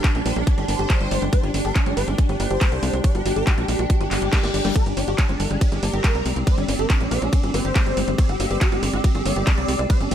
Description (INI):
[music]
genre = psychedelic trance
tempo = 140 BPM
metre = 4/4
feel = straight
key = G phrygian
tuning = A4 = 439 Hz
[part]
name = swarming rave lead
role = melody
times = 0.0-10.1 s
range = D4 to D5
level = -27 LUFS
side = equal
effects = chorus, phaser, sidechain pumping, dub echo
[part]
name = swarming drone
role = sustained chords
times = 0.0-10.1 s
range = C4 to D4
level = -30 LUFS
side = right 3 dB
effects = built-in reverb, sidechain pumping
[part]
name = electronic kick drum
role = drums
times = 0.0-10.0 s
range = none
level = -18 LUFS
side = equal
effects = none
[part]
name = techno drum kit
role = drums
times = 0.0-10.1 s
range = handclaps, hi-hat, ride cymbal, snare drum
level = -28 LUFS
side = equal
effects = none
[part]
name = warbly tape-like pad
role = texture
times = 0.0-10.1 s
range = G3 to D6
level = -31 LUFS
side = equal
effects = chorus, built-in reverb, sidechain pumping
[part]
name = woody wave-folded pluck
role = riff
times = 0.1-10.1 s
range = G3 to Ab4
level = -31 LUFS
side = moving between left 8 dB and right 6 dB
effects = chorus, auto-pan, sidechain pumping, dub echo
[part]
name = tight sequencer bass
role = bass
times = 0.1-10.1 s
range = G1 to C2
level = -24 LUFS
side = equal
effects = none
[part]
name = vowel-sweep wobble bass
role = second line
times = 0.3-0.6, 7.1-7.6 s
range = G3 to F4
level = -38 LUFS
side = left 4 dB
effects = none
[part]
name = reverse cymbal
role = sound effects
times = 4.1-4.8 s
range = none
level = -33 LUFS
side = left 6 dB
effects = none
[sound]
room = little or no reverb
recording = none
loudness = -18 LUFS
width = side -10 dB against mid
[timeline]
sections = 0.0-10.1 A section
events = reverse cymbal 4.1-4.8; drum fill 4.3-4.8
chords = 0.0 G5